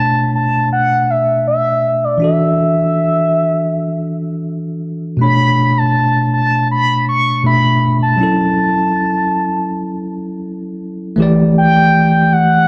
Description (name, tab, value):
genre	soul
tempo	80 BPM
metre	4/4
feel	straight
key	B minor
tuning	A4 = 439 Hz
part	expressive synth lead	melody	0.0-12.7 s	D5 to C#6	-17 LUFS	equal	chorus
part	bell-like tine electric piano	accompaniment	0.0-12.7 s	B2 to E5	-17 LUFS	equal	none
room	moderate plate reverb, RT60 2.9 s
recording	dark, warm production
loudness	-14 LUFS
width	mono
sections	0.0-11.2 A section; 11.2-12.7 B section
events	none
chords	0.0 Bm9; 2.2 E9sus4; 5.2 Bm9; 8.2 F#m7; 11.2 A7sus4